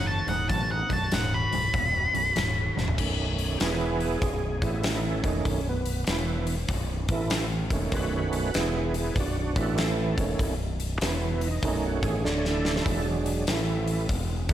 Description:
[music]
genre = blues rock power trio and southern rock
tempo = 97 BPM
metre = 4/4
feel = swing 65% on 8ths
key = B mixolydian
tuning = A4 = 440 Hz
[part]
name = octave-fuzz lead guitar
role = melody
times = 0.0-3.0 s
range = F#5 to B5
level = -28 LUFS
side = equal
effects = distortion
[part]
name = bluesy overdriven lead guitar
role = second line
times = 0.0-3.0 s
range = D#4 to F#4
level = -40 LUFS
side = left 1 dB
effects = distortion, digital delay
[part]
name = crunchy overdriven guitar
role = riff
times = 0.0-3.0 s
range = B1 to G#2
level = -31 LUFS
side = equal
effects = none
[part]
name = growling fingered electric bass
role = bass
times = 0.0-14.5 s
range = B0 to D2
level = -30 LUFS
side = equal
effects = overdrive
[part]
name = big rock drum kit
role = drums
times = 0.3-14.5 s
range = crash cymbal, hi-hat, kick drum, snare drum, toms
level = -29 LUFS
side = left 1 dB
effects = none
[part]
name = overdriven tonewheel organ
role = sustained chords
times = 3.0-14.5 s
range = D3 to C#5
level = -29 LUFS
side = right 4 dB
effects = slow rotary speaker, chorus vibrato
[sound]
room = light reverb, small room reverb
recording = none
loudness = -24 LUFS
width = side -11 dB against mid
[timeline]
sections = 0.0-3.0 A section; 3.0-14.5 B section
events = drum fill 2.7-3.0, 12.2-12.9; tonewheel organ solo 3.0-14.5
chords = 0.0 B7; 3.6 E5; 4.2 G#m/B; 4.5 A5; 5.2 B7; 6.1 E5; 6.7 N.C.; 7.0 A5; 7.6 B7; 8.5 E5; 9.2 B5; 9.5 A5; 10.1 B7; 11.0 E5; 11.6 B7; 12.2 D5; 12.9 E7; 13.5 A5; 14.1 N.C.

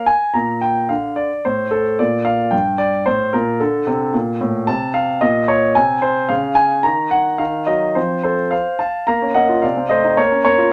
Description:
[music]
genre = classical-period piano sonatina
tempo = 111 BPM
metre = 2/4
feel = straight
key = Bb major, Bb minor from 4.7 s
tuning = A4 = 440 Hz
[part]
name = warm concert grand piano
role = solo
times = 0.0-10.7 s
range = G2 to Bb5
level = -17 LUFS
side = equal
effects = none
[sound]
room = moderate small room reverb, RT60 0.5 s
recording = none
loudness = -17 LUFS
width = mono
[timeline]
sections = 0.4-9.1 A section; 9.1-10.7 B section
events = none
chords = 0.4 Bb; 1.4 N.C.; 2.5 Gm; 3.6 D5; 4.1 N.C.; 7.4 Ebmadd9; 8.0 F; 9.1 Bbm; 9.6 Adim/C; 10.2 Bbm

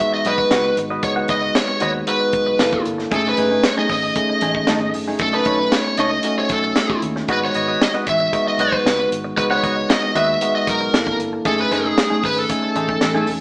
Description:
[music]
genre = polished 1980s jazz-funk pop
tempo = 115 BPM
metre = 4/4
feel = straight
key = F# dorian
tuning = A4 = 438 Hz
[part]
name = lead guitar through a small cranked amp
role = melody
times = 0.0-13.3 s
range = G#4 to E5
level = -19 LUFS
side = equal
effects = overdrive
[part]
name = barky tine electric piano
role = accompaniment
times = 0.0-13.4 s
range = G#3 to G#5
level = -23 LUFS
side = equal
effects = none
[part]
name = clean electric guitar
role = riff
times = 0.0-13.3 s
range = A3 to F#5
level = -24 LUFS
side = equal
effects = none
[part]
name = vintage muted fingered electric bass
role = bass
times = 0.2-13.4 s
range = E1 to D#2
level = -33 LUFS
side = equal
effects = none
[part]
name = tight funk drum kit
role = drums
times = 0.2-13.4 s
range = hi-hat, kick drum, snare drum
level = -21 LUFS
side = equal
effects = none
[sound]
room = wet stone room reverb, RT60 1.0 s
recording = band playing live in one room, small speaker sound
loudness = -16 LUFS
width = side -33 dB against mid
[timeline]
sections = 0.0-13.4 A section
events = none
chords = 0.0 G#m7; 1.0 C#9sus4; 2.6 Gm69; 3.1 F#m69; 5.2 B9; 7.3 G#m7; 9.4 C#9sus4; 10.9 Gm69; 11.5 F#m69

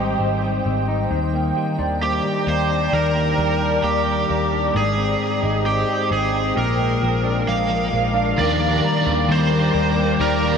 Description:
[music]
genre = dream pop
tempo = 66 BPM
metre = 4/4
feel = straight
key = Eb major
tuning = A4 = 440 Hz
[part]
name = granular cloud pad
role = sustained chords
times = 0.0-10.6 s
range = Bb4 to D6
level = -24 LUFS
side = right 1 dB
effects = built-in reverb
[part]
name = clean electric guitar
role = arpeggios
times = 0.0-10.6 s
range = Ab2 to Eb4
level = -22 LUFS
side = left 3 dB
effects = lush chorus, analog delay
[part]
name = vintage muted picked electric bass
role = bass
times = 0.0-10.6 s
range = Ab1 to Eb2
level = -25 LUFS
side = equal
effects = none
[part]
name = overdriven slide guitar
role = melody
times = 2.0-10.6 s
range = G4 to F5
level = -23 LUFS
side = right 3 dB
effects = analog delay
[part]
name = cranked stack guitar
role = accompaniment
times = 8.4-10.6 s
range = Eb3 to D4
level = -25 LUFS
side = right 3 dB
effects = overdrive, tremolo, analog chorus
[part]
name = worn celesta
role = texture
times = 8.8-10.6 s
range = Bb5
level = -34 LUFS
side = equal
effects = analog delay
[sound]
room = wet huge ambient reverb, RT60 7.4 s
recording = dreamy mix soaked in reverb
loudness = -17 LUFS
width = side -6 dB against mid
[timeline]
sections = 0.0-8.4 A section; 8.4-10.6 B section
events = none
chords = 0.0 Abmaj7; 1.1 Ebmaj7; 4.7 Abmaj7; 6.6 Bb7; 8.4 Ebmaj7

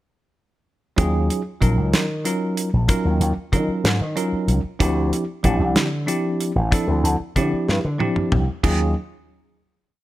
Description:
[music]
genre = electric jazz fusion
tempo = 63 BPM (dotted quarters)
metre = 6/8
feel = straight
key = unclear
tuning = A4 = 438 Hz
[part]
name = bell-like tine electric piano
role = accompaniment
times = 1.0-8.9 s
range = F3 to Bb4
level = -23 LUFS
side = equal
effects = fast stereo tremolo
[part]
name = slap bass with an envelope filter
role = bass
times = 1.0-8.9 s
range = A1 to Eb3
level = -21 LUFS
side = equal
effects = none
[part]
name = damped 70s drum kit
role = drums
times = 1.0-8.8 s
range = crash cymbal, hi-hat, kick drum, snare drum, toms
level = -22 LUFS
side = equal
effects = none
[sound]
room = light reverb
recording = none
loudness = -18 LUFS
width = side -15 dB against mid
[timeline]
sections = 1.0-8.6 groove; 8.6-10.0 final chord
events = drum fill 7.7-8.6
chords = 1.0 Ebm11; 4.8 Dm11; 8.6 Ebm11

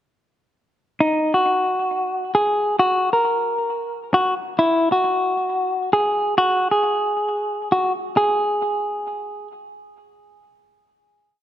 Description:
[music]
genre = hip hop, trap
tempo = 134 BPM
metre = 4/4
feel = half-time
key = unclear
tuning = A4 = 440 Hz
[part]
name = semi-hollow electric guitar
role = solo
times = 1.0-9.5 s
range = D#4 to A#4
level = -18 LUFS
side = equal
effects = low-pass filter, ping-pong delay
[sound]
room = light reverb, digital ambience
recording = none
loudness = -18 LUFS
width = side -11 dB against mid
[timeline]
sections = 1.0-8.2 breakdown; 8.2-11.4 final note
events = none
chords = none

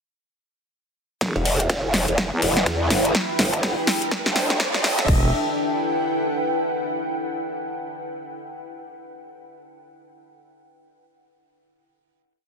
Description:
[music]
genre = bass house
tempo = 124 BPM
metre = 4/4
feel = swing 60% on 16ths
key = E minor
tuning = A4 = 441 Hz
[part]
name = deep dark ambient pad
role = sustained chords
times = 2.0-5.3 s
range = D4 to B5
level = -29 LUFS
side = right 2 dB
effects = chorus, built-in reverb, vintage 12-bit sampler grit, sidechain pumping
[part]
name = growling FM bass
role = bass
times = 1.2-5.3 s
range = E1 to E2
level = -23 LUFS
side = equal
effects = overdrive, sidechain pumping, high-pass filter
[part]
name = big-room dance drum kit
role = drums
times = 1.2-5.2 s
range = crash cymbal, hi-hat, snare drum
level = -23 LUFS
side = left 1 dB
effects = none
[part]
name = dusty soul sampler-style drum kit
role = drums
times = 1.2-5.0 s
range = hi-hat, ride cymbal, snare drum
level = -33 LUFS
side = right 4 dB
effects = none
[part]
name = electronic kick drum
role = drums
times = 1.2-5.2 s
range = none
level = -23 LUFS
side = equal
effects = high-pass filter on kick
[part]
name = riser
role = sound effects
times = 2.8-5.1 s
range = none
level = -31 LUFS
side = right 1 dB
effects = none
[part]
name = ethereal airy pad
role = texture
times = 1.8-7.0 s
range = D4 to G5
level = -28 LUFS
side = left 1 dB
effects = ensemble chorus, built-in reverb, sidechain pumping
[part]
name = growl bass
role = bass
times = 1.4-5.1 s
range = E1 to E2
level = -23 LUFS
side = equal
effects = chorus, tube saturation, sidechain pumping
[sound]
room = light reverb, digital ambience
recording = dense, heavily limited modern master, high-pass filter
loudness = -20 LUFS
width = side -5 dB against mid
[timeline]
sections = 1.2-5.1 build; 5.1-7.0 final chord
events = build-up 1.2-5.1; drum fill 1.2-5.1; riser 2.8-5.1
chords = 1.2 Em; 3.1 Dsus4; 5.1 Em

